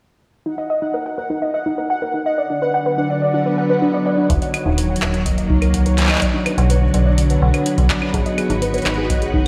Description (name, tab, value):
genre	IDM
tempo	125 BPM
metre	4/4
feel	straight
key	unclear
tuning	A4 = 440 Hz
part	warbly dusty pluck	arpeggios	0.5-9.4 s	D4 to Gb5	-24 LUFS	equal	chorus, digital delay, slapback echo
part	pulsing gated texture	texture	0.5-9.5 s	Db5 to Gb5	-31 LUFS	equal	chorus, built-in reverb
part	soft string machine	sustained chords	2.6-9.5 s	D3 to B4	-23 LUFS	equal	ensemble chorus, sidechain pumping
part	metallic FM bass	bass	4.3-9.5 s	Eb1 to Db2	-20 LUFS	equal	none
part	electro analog drum machine	drums	4.3-9.3 s	claves, handclaps, hi-hat	-26 LUFS	equal	small room ambience, slapback echo
part	electronic kick drum	drums	4.3-9.4 s	none	-22 LUFS	equal	small room ambience
room	wet scoring stage reverb, RT60 1.9 s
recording	big arena sound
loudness	-18 LUFS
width	mono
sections	0.5-4.3 A section; 4.3-9.5 B section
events	none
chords	0.5 Ebm; 2.4 Bm; 4.3 Ebm; 6.2 Bm; 8.1 Abm7